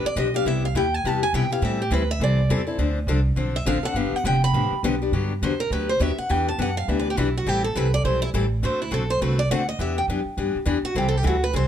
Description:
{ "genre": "acoustic string swing (jazz manouche)", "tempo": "206 BPM", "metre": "4/4", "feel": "swing 59% on 8ths", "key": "G major from 5.1 s", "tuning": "A4 = 441 Hz", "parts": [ { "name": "picked steel-string acoustic guitar", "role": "melody", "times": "0.0-11.7 s", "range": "E4 to B5", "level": "-26 LUFS", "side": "right 2 dB", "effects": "none" }, { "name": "picked steel-string acoustic guitar", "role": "accompaniment", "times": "0.0-11.7 s", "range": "C3 to A4", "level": "-25 LUFS", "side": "left 5 dB", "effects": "none" }, { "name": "upright bass", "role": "bass", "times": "0.0-11.7 s", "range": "F1 to B2", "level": "-24 LUFS", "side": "right 1 dB", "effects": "none" } ], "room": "light reverb", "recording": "dark, warm production", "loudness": "-20 LUFS", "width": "side -9 dB against mid", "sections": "0.0-5.1 A section; 5.1-11.7 A section", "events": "steel-string acoustic guitar solo 0.0-5.1, 5.1-11.7", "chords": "0.5 Cmaj7; 1.6 Am7; 2.8 Dm7; 4.0 G7; 5.1 Gmaj7; 6.3 Em9; 7.5 Am9; 8.6 D7; 9.8 Em7; 11.0 C6", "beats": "0.16 | 0.45 0.75 1.04 1.33 | 1.62 1.91 2.21 2.50 | 2.79 3.08 3.37 3.66 | 3.96 4.25 4.54 4.83 | 5.12 5.42 5.71 6.00 | 6.29 6.58 6.88 7.17 | 7.46 7.75 8.04 8.33 | 8.63 8.92 9.21 9.50 | 9.79 10.09 10.38 10.67 | 10.96 11.25 11.54" }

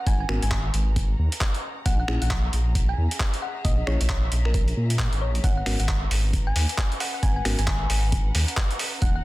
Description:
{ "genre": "UK garage, two-step garage", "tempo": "134 BPM", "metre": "4/4", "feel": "swing 61% on 16ths", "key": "G# minor", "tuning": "A4 = 439 Hz", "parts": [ { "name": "thumb-piano-like synth pluck", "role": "melody", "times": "0.0-9.2 s", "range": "A#4 to G#5", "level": "-33 LUFS", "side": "left 1 dB", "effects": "chorus, dub echo" }, { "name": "dark studio string section", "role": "texture", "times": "0.0-9.2 s", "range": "C#4 to A#5", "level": "-40 LUFS", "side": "left 1 dB", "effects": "sidechain pumping" }, { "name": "dark detuned saw bass", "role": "bass", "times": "0.1-9.2 s", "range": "D#1 to A#2", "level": "-23 LUFS", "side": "equal", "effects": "none" }, { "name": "boom bap sampler-style drum kit", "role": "drums", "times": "0.1-9.1 s", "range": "finger snaps, handclaps, hi-hat", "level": "-29 LUFS", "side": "equal", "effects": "soft clipping on snare" }, { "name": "electronic kick drum", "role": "drums", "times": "0.1-9.1 s", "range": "none", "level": "-24 LUFS", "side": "equal", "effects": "none" }, { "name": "mellow tine electric piano", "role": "stabs", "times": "0.3-7.6 s", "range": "B3 to A#4", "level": "-34 LUFS", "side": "left 1 dB", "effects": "low-pass filter, dub echo" } ], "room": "little or no reverb", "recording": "dense, heavily limited modern master", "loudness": "-21 LUFS", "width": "side -18 dB against mid", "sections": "0.0-9.2 A section", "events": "fade-in on string section 0.0-9.2", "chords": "0.0 G#m11; 1.9 A#m7b5; 5.4 G#m11", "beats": "| 0.07 0.51 0.96 1.41 | 1.86 2.30 2.75 3.20 | 3.65 4.09 4.54 4.99 | 5.44 5.89 6.33 6.78 | 7.23 7.68 8.12 8.57 | 9.02" }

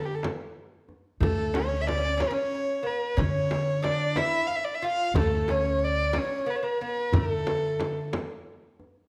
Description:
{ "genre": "Persian modal ensemble", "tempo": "61 BPM (dotted quarters)", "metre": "6/8", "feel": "straight", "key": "D avaz esfahan", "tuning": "A4 = 440 Hz", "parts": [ { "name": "dark violin", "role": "melody", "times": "0.0-8.1 s", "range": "G4 to F5", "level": "-30 LUFS", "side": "equal", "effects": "none" }, { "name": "upright bass", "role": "bass", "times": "0.0-8.1 s", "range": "D2 to D3", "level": "-33 LUFS", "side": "equal", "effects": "none" }, { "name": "frame drum", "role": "percussion", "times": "0.2-8.3 s", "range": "none", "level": "-35 LUFS", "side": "equal", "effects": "none" }, { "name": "tombak", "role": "percussion", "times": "0.2-8.9 s", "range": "none", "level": "-34 LUFS", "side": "equal", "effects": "none" }, { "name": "lute", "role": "second line", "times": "1.2-8.1 s", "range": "A3 to F4", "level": "-36 LUFS", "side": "equal", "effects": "none" } ], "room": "moderate recital hall reverb, RT60 1.3 s", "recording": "none", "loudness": "-27 LUFS", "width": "mono", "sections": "0.0-9.1 A section", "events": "none", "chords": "none", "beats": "0.23 | 1.22 2.21 | 3.19 4.18 | 5.17 6.15 | 7.14 8.12" }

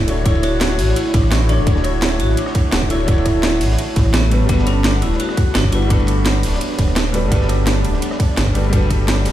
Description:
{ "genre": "liquid drum and bass", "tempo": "170 BPM", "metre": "4/4", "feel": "straight", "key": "D major", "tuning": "A4 = 442 Hz", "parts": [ { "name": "vibraphone with medium hard mallets", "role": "melody", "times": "0.0-9.3 s", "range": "B3 to F#4", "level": "-24 LUFS", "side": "moving between left 3 dB and right 4 dB", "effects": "auto-pan, tape echo" }, { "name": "warm grand piano", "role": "accompaniment", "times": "0.0-9.3 s", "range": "D3 to C#5", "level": "-23 LUFS", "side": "left 2 dB", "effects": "tape echo" }, { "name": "warm analog pad", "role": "sustained chords", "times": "0.0-9.3 s", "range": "G3 to C#5", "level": "-25 LUFS", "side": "right 1 dB", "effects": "chorus, vintage 12-bit sampler grit, sidechain pumping" }, { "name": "sub bass with octave", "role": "bass", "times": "0.0-9.3 s", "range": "D1 to A1", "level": "-18 LUFS", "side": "equal", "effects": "none" }, { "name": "crunchy breakbeat drum kit", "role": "drums", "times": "0.1-9.3 s", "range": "hi-hat, ride cymbal, snare drum", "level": "-29 LUFS", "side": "equal", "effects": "high-pass filter on cymbals, high-pass filter on hats, high-pass filter on snare, high-pass filter on room" }, { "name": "garage drum kit", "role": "drums", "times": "0.1-9.3 s", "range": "hi-hat, ride cymbal, rim click, snare drum", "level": "-23 LUFS", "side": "right 1 dB", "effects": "none" }, { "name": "electronic kick drum", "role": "drums", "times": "0.3-9.0 s", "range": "none", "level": "-16 LUFS", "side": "equal", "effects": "none" } ], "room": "studio reverb", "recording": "played on a big sound system in a bare room, large studio reverb", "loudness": "-14 LUFS", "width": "side -12 dB against mid", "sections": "0.0-9.3 A section", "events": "none", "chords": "0.0 Dmaj9; 4.3 Gmaj9", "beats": "| 0.26 0.61 0.96 1.32 | 1.67 2.02 2.38 2.73 | 3.08 3.43 3.79 4.14 | 4.49 4.85 5.20 5.55 | 5.91 6.26 6.61 6.96 | 7.32 7.67 8.02 8.38 | 8.73 9.08" }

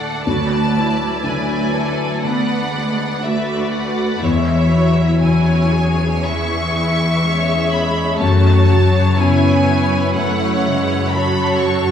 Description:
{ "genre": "cinematic, emotional film score for orchestra", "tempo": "61 BPM", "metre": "4/4", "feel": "rubato", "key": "F# minor", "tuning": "A4 = 441 Hz", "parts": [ { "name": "rich symphonic violin section", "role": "melody", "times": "0.0-11.9 s", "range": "E5 to C#6", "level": "-23 LUFS", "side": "left 1 dB", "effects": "none" }, { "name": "rich symphonic violin section", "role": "second line", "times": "0.0-11.9 s", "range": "A4 to E5", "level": "-23 LUFS", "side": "left 1 dB", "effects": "none" }, { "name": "felt-muted upright piano", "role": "accompaniment", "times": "0.0-11.9 s", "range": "D2 to E3", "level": "-21 LUFS", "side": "left 2 dB", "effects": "none" }, { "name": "rich symphonic viola section", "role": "accompaniment", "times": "0.0-11.9 s", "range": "E3 to G#4", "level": "-22 LUFS", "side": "right 3 dB", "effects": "none" }, { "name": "concert harp", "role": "arpeggios", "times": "0.0-11.9 s", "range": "F#2 to C#5", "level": "-21 LUFS", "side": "left 4 dB", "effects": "none" }, { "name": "rich symphonic cello section", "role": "bass", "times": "0.0-11.9 s", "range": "D2 to F#2", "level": "-22 LUFS", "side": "right 1 dB", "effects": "none" } ], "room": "wet recital hall reverb, RT60 1.7 s", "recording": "small room reverb", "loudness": "-14 LUFS", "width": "side -8 dB against mid", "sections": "0.0-11.9 A section", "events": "none", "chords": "0.3 Bm/D; 4.2 C#m/E; 8.2 F#m7", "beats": "| 0.26 1.24 2.24 3.24 | 4.23 5.22 6.25 7.24 | 8.21 9.19 10.16 11.13" }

